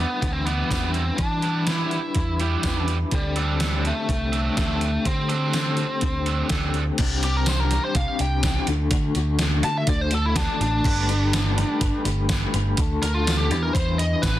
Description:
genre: indie rock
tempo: 124 BPM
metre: 4/4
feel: straight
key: unclear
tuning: A4 = 441 Hz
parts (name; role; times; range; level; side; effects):
- biting lead guitar; melody; 0.0-14.4 s; G3 to A5; -27 LUFS; equal; overdrive
- electric guitar through a small old amp; riff; 0.0-14.4 s; C3 to B4; -28 LUFS; left 5 dB; tremolo
- overdriven electric guitar; riff; 0.0-6.8 s; F#3 to A4; -30 LUFS; right 6 dB; lush chorus, analog delay
- picked electric bass; bass; 0.0-14.4 s; G1 to E3; -24 LUFS; equal; none
- detuned 8-bit digital drum machine; drums; 0.2-14.3 s; crash cymbal, hi-hat, kick drum, snare drum, tambourine; -26 LUFS; right 1 dB; none
room: light reverb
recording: dense, heavily limited modern master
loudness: -20 LUFS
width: side -14 dB against mid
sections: 0.0-7.0 A section; 7.0-14.4 B section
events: lead electric guitar solo 7.0-14.4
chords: 0.0 Em7; 3.1 D7sus4; 7.0 Csus2; 8.7 D; 10.8 Gadd9; 12.8 D; 13.5 Em7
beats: 0.22 0.71 | 1.19 1.67 2.16 2.64 | 3.12 3.61 4.09 4.58 | 5.06 5.54 6.02 6.51 | 6.99 7.47 7.95 8.43 | 8.91 9.40 9.88 10.36 | 10.84 11.32 11.80 12.29 | 12.77 13.25 13.73 14.21

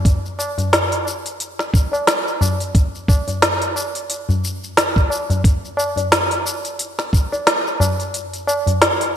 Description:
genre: downtempo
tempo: 89 BPM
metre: 4/4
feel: swing 57% on 16ths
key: none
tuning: none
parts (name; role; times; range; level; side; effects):
- electronic kick drum; drums; 0.1-7.3 s; none; -14 LUFS; equal; none
- organic electronic drum kit; drums; 0.1-9.1 s; hi-hat, shaker, snare drum; -18 LUFS; equal; overdrive, gated reverb
- tabla; percussion; 0.4-8.8 s; none; -21 LUFS; left 1 dB; none
room: moderate lush hall reverb, RT60 2.1 s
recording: bright 1980s-style digital production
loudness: -16 LUFS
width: side -9 dB against mid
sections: 0.0-9.2 A section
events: kick drops out 8.1-9.2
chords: none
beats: | 0.05 0.73 1.40 2.08 | 2.75 3.42 4.10 4.77 | 5.45 6.12 6.79 7.47 | 8.14 8.82

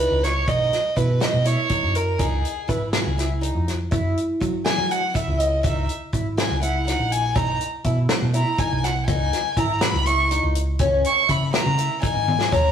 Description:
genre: progressive instrumental, band music in an uneven meter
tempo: 244 BPM (eighths)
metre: 7/8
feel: straight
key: C# dorian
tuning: A4 = 438 Hz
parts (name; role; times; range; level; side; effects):
- warm violin; melody; 0.0-12.7 s; G#4 to C#6; -23 LUFS; equal; none
- picked twelve-string acoustic guitar; arpeggios; 0.0-12.7 s; C#4 to G#4; -28 LUFS; left 1 dB; none
- hollow-body short-scale picked electric bass; bass; 0.0-12.7 s; G#1 to F#3; -24 LUFS; right 1 dB; none
- warm soul drum kit; drums; 0.2-12.6 s; hi-hat, kick drum, snare drum, toms; -25 LUFS; equal; none
room: wet stone room reverb, RT60 1.1 s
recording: rough rehearsal-room recording, tube saturation, small room ambience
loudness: -19 LUFS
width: side -8 dB against mid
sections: 0.0-12.5 A section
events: violin solo 0.0-12.5; drum fill 12.3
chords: 0.5 Badd9; 2.2 C#madd9; 3.9 F#5; 5.6 C#madd9; 7.4 B; 9.1 C#madd9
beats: 0.23 | 0.48 0.72 0.97 1.22 1.46 1.71 1.96 | 2.20 2.45 2.69 2.94 3.18 3.43 3.68 | 3.92 4.17 4.41 4.66 4.91 5.15 5.40 | 5.64 5.89 6.13 6.38 6.62 6.87 7.12 | 7.36 7.61 7.85 8.10 8.34 8.59 8.84 | 9.08 9.33 9.57 9.82 10.06 10.31 10.55 | 10.80 11.04 11.29 11.54 11.78 12.03 12.27 | 12.52

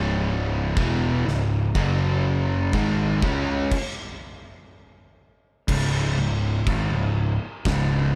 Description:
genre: stoner and doom metal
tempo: 61 BPM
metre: 4/4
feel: straight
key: C# minor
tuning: A4 = 440 Hz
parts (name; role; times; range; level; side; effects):
- crunchy overdriven guitar; riff; 0.0-3.7 s; C#2 to C#4; -31 LUFS; equal; none
- fuzz guitar; riff; 0.0-8.2 s; C#2 to C#4; -30 LUFS; equal; distortion
- thick fuzz guitar; riff; 0.0-8.2 s; C#2 to C#4; -28 LUFS; equal; distortion
- fuzz picked electric bass; bass; 0.0-8.2 s; C#1 to C#2; -29 LUFS; equal; overdrive
- oversized low-tuned drum kit; drums; 0.8-7.9 s; crash cymbal, kick drum, snare drum; -31 LUFS; equal; none
room: light reverb, studio reverb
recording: dark, warm production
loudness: -23 LUFS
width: mono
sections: 0.0-5.7 A section; 5.7-8.2 A section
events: stop 3.7-5.7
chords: 0.0 C#m; 1.8 F#5; 2.7 C#5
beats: 0.77 | 1.75 2.74 3.72 4.70 | 5.69 6.67 7.65

